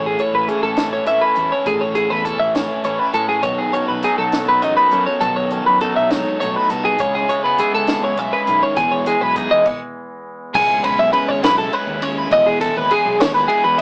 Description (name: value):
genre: math rock and midwest emo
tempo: 68 BPM (dotted quarters)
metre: 6/8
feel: straight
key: E major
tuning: A4 = 440 Hz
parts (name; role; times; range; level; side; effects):
- twangy electric guitar; accompaniment; 0.0-11.4 s; E2 to E4; -29 LUFS; equal; none
- twelve-string electric guitar; arpeggios; 0.0-13.8 s; G#4 to E5; -18 LUFS; equal; none
- crunchy overdriven guitar; riff; 0.0-13.8 s; A2 to A4; -27 LUFS; equal; none
- modern bright fingered electric bass; bass; 0.0-13.8 s; G#1 to A2; -33 LUFS; equal; none
- compact cocktail drum kit; drums; 0.2-13.8 s; crash cymbal, hi-hat, kick drum, ride cymbal, snare drum; -27 LUFS; equal; none
room: moderate studio ambience, RT60 0.5 s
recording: rough rehearsal-room recording, tube saturation, small speaker sound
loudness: -17 LUFS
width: mono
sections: 0.0-10.5 A section; 10.5-13.8 B section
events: stop 9.7-10.5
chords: 0.0 Amaj7; 3.5 B9; 7.0 C#m7; 8.8 Emaj7; 10.5 C#m7; 12.3 Emaj7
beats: 0.79 | 1.68 2.56 | 3.45 4.34 | 5.23 6.12 | 7.00 7.89 | 8.77 9.66 | 10.54 11.43 | 12.31 13.19